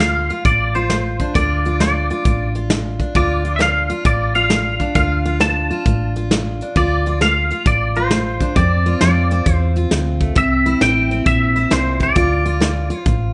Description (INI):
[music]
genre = honky-tonk and classic country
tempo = 133 BPM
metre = 4/4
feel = swing 66% on 8ths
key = D minor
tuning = A4 = 440 Hz
[part]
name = twangy electric guitar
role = melody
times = 0.0-13.3 s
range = C5 to A5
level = -21 LUFS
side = equal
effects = ensemble chorus
[part]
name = picked steel-string acoustic guitar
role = accompaniment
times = 0.0-13.3 s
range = F2 to F4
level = -24 LUFS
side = equal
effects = none
[part]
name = hollow-body short-scale fingered electric bass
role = bass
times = 0.0-13.3 s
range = A1 to F2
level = -22 LUFS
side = equal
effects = none
[part]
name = soft brush drum kit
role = drums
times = 0.0-13.2 s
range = hi-hat, kick drum, snare drum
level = -22 LUFS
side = equal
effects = none
[sound]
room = light reverb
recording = nothing above 10.6 kHz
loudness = -17 LUFS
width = mono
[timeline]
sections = 0.0-13.3 A section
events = none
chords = 0.0 Dm; 8.6 F5; 10.4 C; 12.2 Dm